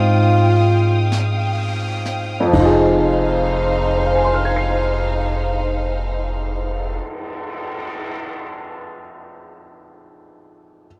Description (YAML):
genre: jazz ballad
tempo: 41 BPM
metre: 4/4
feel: swing 68% on 8ths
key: F minor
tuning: A4 = 440 Hz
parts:
  - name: breathy flugelhorn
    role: melody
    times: 0.0-1.1 s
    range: F4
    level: -21 LUFS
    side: equal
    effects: cassette tape
  - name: warm upright piano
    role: accompaniment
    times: 0.0-10.9 s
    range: F2 to C7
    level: -23 LUFS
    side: equal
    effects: cassette tape, plate reverb
  - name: rich studio string section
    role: sustained chords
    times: 0.0-7.0 s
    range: Eb4 to Eb6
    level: -25 LUFS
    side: equal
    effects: cassette tape
  - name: upright bass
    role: bass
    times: 0.0-7.0 s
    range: F1 to Ab2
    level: -22 LUFS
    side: equal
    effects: none
  - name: jazz brush drum kit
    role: drums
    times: 1.1-8.1 s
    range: brushed snare drum, crash cymbal, cymbal swell, hi-hat, kick drum, snare drum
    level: -34 LUFS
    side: equal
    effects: cassette tape
room: light reverb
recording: home recording on cassette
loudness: -19 LUFS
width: mono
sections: 0.0-2.5 A section; 2.5-8.4 B section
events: slowing down 0.0-2.5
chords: 0.0 Fm9; 2.5 Fm7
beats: 1.11 | 2.53 4.00 5.45 6.90